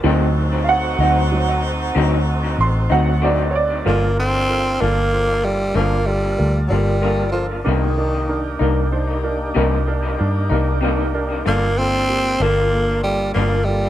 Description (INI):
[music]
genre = blues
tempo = 63 BPM (dotted quarters)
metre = 12/8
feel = straight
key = G minor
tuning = A4 = 440 Hz
[part]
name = clear upright piano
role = accompaniment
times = 0.0-13.9 s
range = F#3 to C6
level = -24 LUFS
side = right 4 dB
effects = none
[part]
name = electric guitar through a small old amp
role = accompaniment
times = 0.0-13.6 s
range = G2 to Eb4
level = -24 LUFS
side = left 3 dB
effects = tremolo, dub echo
[part]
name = tonewheel organ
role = sustained chords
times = 0.0-13.9 s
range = Bb3 to A4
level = -29 LUFS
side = equal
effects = slow rotary speaker, overdrive
[part]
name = vintage muted fingered electric bass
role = bass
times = 0.0-13.9 s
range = G1 to G2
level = -20 LUFS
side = equal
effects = none
[part]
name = edgy saxophone section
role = sustained chords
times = 0.1-3.8 s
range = Eb4 to C5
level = -29 LUFS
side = equal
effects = none
[part]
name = growling tenor saxophone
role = melody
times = 3.9-13.9 s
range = Eb3 to C4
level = -19 LUFS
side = equal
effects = none
[sound]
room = light reverb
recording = echo-heavy mix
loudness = -16 LUFS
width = side -12 dB against mid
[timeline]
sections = 0.0-3.9 A section; 3.9-13.9 B section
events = upright piano solo 0.0-3.9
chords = 0.0 D7b9; 3.9 Gm7; 7.7 Cm7; 11.5 Gm7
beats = | 0.04 0.99 1.95 2.90 | 3.85 4.80 5.76 6.71 | 7.66 8.61 9.56 10.51 | 11.46 12.41 13.36